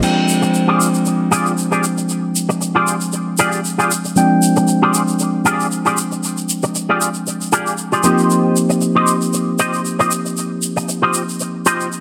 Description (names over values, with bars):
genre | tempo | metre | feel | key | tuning
nu-disco, nu disco | 116 BPM | 4/4 | swing 54% on 16ths | F dorian | A4 = 439 Hz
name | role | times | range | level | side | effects
tine electric piano | accompaniment | 0.0-12.0 s | F3 to G5 | -19 LUFS | equal | analog delay
tube shaker | percussion | 0.0-12.0 s | none | -25 LUFS | equal | none
electric guitar with an envelope filter | riff | 0.4-11.9 s | F4 to Eb5 | -20 LUFS | equal | ensemble chorus, low-pass filter, analog delay
room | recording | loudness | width
moderate plate reverb, RT60 1.5 s, small room ambience | dense, heavily limited modern master | -17 LUFS | mono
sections
0.0-12.0 A section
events
none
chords
0.0 Fm69; 8.0 Eb69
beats
| 0.03 0.54 1.06 1.58 | 2.09 2.61 3.13 3.65 | 4.16 4.68 5.20 5.71 | 6.23 6.75 7.27 7.78 | 8.30 8.82 9.34 9.85 | 10.37 10.89 11.40 11.92